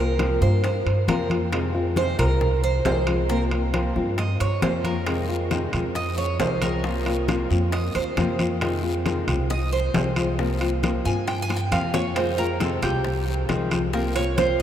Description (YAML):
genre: latin, Cuban son and guajira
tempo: 135 BPM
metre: 4/4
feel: straight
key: F minor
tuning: A4 = 440 Hz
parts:
  - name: flamenco guitar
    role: accompaniment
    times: 0.0-14.6 s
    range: C3 to F4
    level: -27 LUFS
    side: left 2 dB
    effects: none
  - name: Cuban tres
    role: arpeggios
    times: 0.0-14.6 s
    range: G4 to Ab5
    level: -27 LUFS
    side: right 4 dB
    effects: none
  - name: upright bass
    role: bass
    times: 0.0-14.6 s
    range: C2 to G2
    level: -25 LUFS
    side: equal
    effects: none
  - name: bongos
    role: percussion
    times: 0.2-14.6 s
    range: none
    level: -34 LUFS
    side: left 5 dB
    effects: none
  - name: congas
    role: percussion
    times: 0.2-14.6 s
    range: none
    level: -31 LUFS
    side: left 2 dB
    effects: none
  - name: timbales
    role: percussion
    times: 0.2-14.6 s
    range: none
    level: -33 LUFS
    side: right 3 dB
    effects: none
  - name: guiro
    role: percussion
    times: 5.1-14.6 s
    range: none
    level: -40 LUFS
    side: left 6 dB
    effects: none
room: wet huge ambient reverb, RT60 7.6 s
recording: in a vast, echoing space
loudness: -21 LUFS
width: side -10 dB against mid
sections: 0.0-14.6 A section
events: Cuban tres solo 0.0-14.6; drum fill 11.5-12.2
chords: 0.0 C7sus4; 1.5 Fm7; 3.3 C7sus4; 5.1 Fm7; 6.8 C7sus4; 8.6 Fm7; 10.4 C7sus4; 12.2 Fm7; 13.9 C7sus4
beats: 0.20 0.64 1.08 | 1.53 1.97 2.41 2.86 | 3.30 3.74 4.18 4.63 | 5.07 5.51 5.96 6.40 | 6.84 7.29 7.73 8.17 | 8.62 9.06 9.50 9.95 | 10.39 10.83 11.28 11.72 | 12.16 12.61 13.05 13.49 | 13.94 14.38